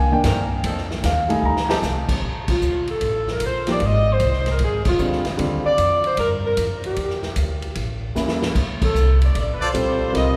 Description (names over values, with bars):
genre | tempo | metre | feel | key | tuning
jazz, big band swing | 152 BPM | 4/4 | swing 66% on 8ths | Bb major | A4 = 441 Hz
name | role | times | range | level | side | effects
warm grand piano | accompaniment | 0.0-5.6, 8.1-10.4 s | D3 to Bb5 | -27 LUFS | equal | none
upright bass | bass | 0.0-10.4 s | F1 to G2 | -25 LUFS | equal | none
warm saxophone section | sustained chords | 0.2-1.8 s | Eb3 to Bb4 | -34 LUFS | equal | none
swinging big-band drum kit | drums | 0.2-10.3 s | crash cymbal, hi-hat, kick drum, ride cymbal, snare drum | -29 LUFS | equal | none
mellow saxophone section | melody | 2.5-10.4 s | F4 to Eb5 | -24 LUFS | equal | none
clear trumpet section | stabs | 9.6-9.7 s | F4 to D5 | -28 LUFS | equal | none
room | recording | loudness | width
wet church reverb, RT60 3.7 s | recorded in a church or concert hall | -21 LUFS | mono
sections
0.0-2.2 A section; 2.2-10.4 B section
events
grand piano solo 0.0-2.2; drum fill 1.4-1.8, 8.2-8.6; band accent 2.4, 4.8, 8.8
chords
0.0 Cm9; 0.6 F7; 2.2 Bbmaj7; 3.8 Ab; 4.6 Bb13; 5.4 Eb69; 7.0 Dsus24; 7.8 A7b9; 8.6 Dm7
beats
0.24 | 0.64 1.03 1.43 1.82 | 2.22 2.62 3.01 3.41 | 3.80 4.20 4.59 4.99 | 5.38 5.78 6.18 6.57 | 6.97 7.37 7.76 8.16 | 8.56 8.95 9.35 9.75 | 10.14